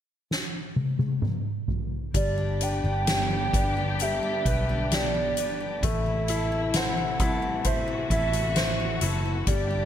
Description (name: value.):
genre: pop ballad.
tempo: 66 BPM.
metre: 4/4.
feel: straight.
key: G major.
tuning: A4 = 438 Hz.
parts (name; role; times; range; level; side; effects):
soft-mallet drum kit; drums; 0.3-9.7 s; hi-hat, kick drum, snare drum, toms; -28 LUFS; equal; gated reverb.
bright upright piano; accompaniment; 2.1-9.9 s; G3 to C5; -33 LUFS; left 5 dB; none.
muted studio string section; sustained chords; 2.1-9.9 s; C3 to G4; -33 LUFS; left 1 dB; none.
picked steel-string acoustic guitar; arpeggios; 2.1-9.9 s; G2 to B4; -38 LUFS; left 3 dB; ping-pong delay.
vintage muted fingered electric bass; bass; 2.1-9.9 s; F#1 to C2; -29 LUFS; equal; none.
hollow clarinet-like synth lead; melody; 2.2-9.9 s; D5 to G5; -29 LUFS; right 2 dB; chorus.
room: studio ambience.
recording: bright 1980s-style digital production.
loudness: -24 LUFS.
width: side -10 dB against mid.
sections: 0.0-2.1 A section; 2.1-9.9 B section.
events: drum fill 0.3-2.1.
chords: 0.0 N.C.; 2.1 G; 5.8 Am.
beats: 0.30 1.22 | 2.14 3.07 3.99 4.91 | 5.83 6.74 7.65 8.56 | 9.47.